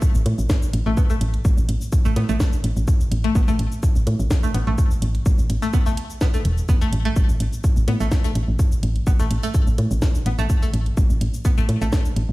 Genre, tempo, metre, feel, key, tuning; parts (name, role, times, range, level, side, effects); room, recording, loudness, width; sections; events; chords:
minimal techno; 126 BPM; 4/4; swing 53% on 16ths; A4 = 440 Hz
electronic kick drum; drums; 0.0-12.0 s; -18 LUFS; equal; overdrive
house drum kit; drums; 0.0-12.3 s; cabasa, hi-hat, snare drum; -32 LUFS; equal; overdrive
woody FM bass; bass; 0.1-12.3 s; E1 to A2; -21 LUFS; equal; sidechain pumping
string-like resonator pluck; riff; 0.9-11.8 s; A3 to B3; -27 LUFS; left 1 dB; chorus, phaser, sidechain pumping, ping-pong delay
little or no reverb; played on a big sound system in a bare room, stone room reverb; -18 LUFS; side -19 dB against mid
0.0-12.3 A section
0.0 A5